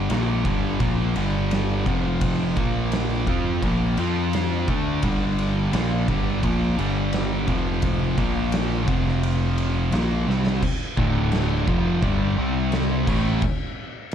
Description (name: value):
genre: stoner and doom metal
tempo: 86 BPM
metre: 4/4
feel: straight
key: unclear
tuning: A4 = 439 Hz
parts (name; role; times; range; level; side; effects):
- fuzz guitar; riff; 0.0-13.4 s; D2 to F4; -26 LUFS; right 9 dB; distortion
- thick fuzz guitar; riff; 0.0-13.4 s; D2 to F4; -26 LUFS; left 8 dB; distortion
- tight distorted guitar; riff; 0.0-13.4 s; D2 to F4; -29 LUFS; equal; distortion
- growling picked electric bass; bass; 0.0-13.4 s; D1 to F2; -27 LUFS; equal; overdrive
- oversized low-tuned drum kit; drums; 0.1-14.1 s; crash cymbal, kick drum, ride cymbal, snare drum; -27 LUFS; equal; none
room: little or no reverb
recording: dark, warm production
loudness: -20 LUFS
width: side -9 dB against mid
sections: 0.0-10.6 A section; 10.6-14.1 B section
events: drum fill 10.3-10.6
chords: 0.0 G5; 1.9 F5; 2.6 Bb5; 3.3 Bbsus2; 4.0 F5; 4.7 G5; 7.5 F5; 8.2 Bb5; 8.9 F5; 9.9 Fsus24/Bb; 10.6 Dm; 12.4 C5; 13.1 N.C.